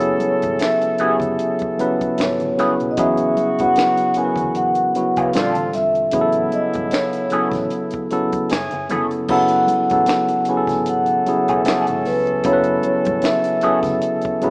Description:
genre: R&B, neo-soul.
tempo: 76 BPM.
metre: 4/4.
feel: swing 56% on 16ths.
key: unclear.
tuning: A4 = 438 Hz.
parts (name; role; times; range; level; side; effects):
vibraphone with soft mallets; melody; 0.0-14.5 s; B4 to G#5; -22 LUFS; equal; slapback echo.
bright tine electric piano; accompaniment; 0.0-14.5 s; C#3 to B4; -23 LUFS; equal; none.
warm horn section; stabs; 0.0-14.5 s; C#3 to A4; -31 LUFS; equal; none.
vintage muted fingered electric bass; bass; 0.0-14.5 s; E1 to F#2; -37 LUFS; equal; none.
compact cocktail drum kit; drums; 0.0-14.5 s; crash cymbal, finger snaps, hi-hat, kick drum, snare drum; -29 LUFS; equal; none.
congas; percussion; 0.2-14.5 s; none; -38 LUFS; equal; none.
electric guitar through a small old amp; second line; 1.0-13.8 s; E3 to A4; -26 LUFS; equal; wah.
room: light reverb, small room ambience.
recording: rough home demo mix, small speaker sound.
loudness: -19 LUFS.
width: mono.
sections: 0.0-9.3 A section; 9.3-14.5 A section.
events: none.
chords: 0.0 F#m9; 3.0 E6; 5.3 A#maj9; 6.1 Aadd9; 8.5 F#m9; 9.3 E6.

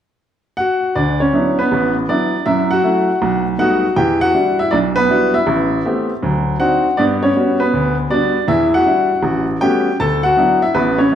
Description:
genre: solo jazz.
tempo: 160 BPM.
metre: 4/4.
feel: swing 64% on 8ths.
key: D major.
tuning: A4 = 441 Hz.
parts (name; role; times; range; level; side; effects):
clear baby grand piano; solo; 0.6-11.2 s; A1 to A5; -13 LUFS; equal; none.
room: wet large studio reverb, RT60 1.5 s.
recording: heard from further back in the room.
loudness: -13 LUFS.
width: side -9 dB against mid.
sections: 1.0-11.2 A section.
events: none.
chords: 0.0 N.C.; 1.0 D69; 2.5 F#m7; 3.2 B7b13; 4.0 Em9; 5.5 Am9; 6.2 D7b9; 7.0 Gmaj7; 8.5 Em7; 9.2 A13; 10.0 D69.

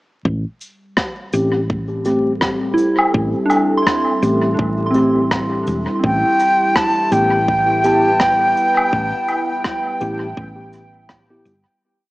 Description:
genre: ambient dub.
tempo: 83 BPM.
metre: 4/4.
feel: swing 58% on 16ths.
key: A minor.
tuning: A4 = 440 Hz.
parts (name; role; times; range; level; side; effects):
hollow-body short-scale fingered electric bass; bass; 0.2-11.6 s; E1 to A1; -23 LUFS; equal; none.
deep dark ambient pad; sustained chords; 2.0-11.8 s; G3 to E5; -24 LUFS; equal; chorus, built-in reverb.
electronic kick drum; drums; 0.3-11.3 s; none; -24 LUFS; equal; none.
cabasa, rim click and woodblock; drums; 0.6-11.6 s; none; -21 LUFS; equal; dub echo.
mellow tine electric piano; stabs; 1.3-11.5 s; A3 to G4; -22 LUFS; left 1 dB; medium stereo tremolo, low-pass filter, dub echo.
soft synth bell; arpeggios; 2.7-6.2 s; C4 to C6; -20 LUFS; right 1 dB; chorus, tape echo.
bright wooden flute; melody; 6.0-11.1 s; G5 to A5; -16 LUFS; equal; tape echo.
room: moderate echo chamber reverb, RT60 2.1 s.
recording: vinyl crackle, small speaker sound.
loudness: -14 LUFS.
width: side -19 dB against mid.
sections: 0.3-11.8 groove.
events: filter sweep on tine electric piano 0.3-11.8; fade-out 8.0-11.8.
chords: 0.3 Am7; 6.0 Em/A.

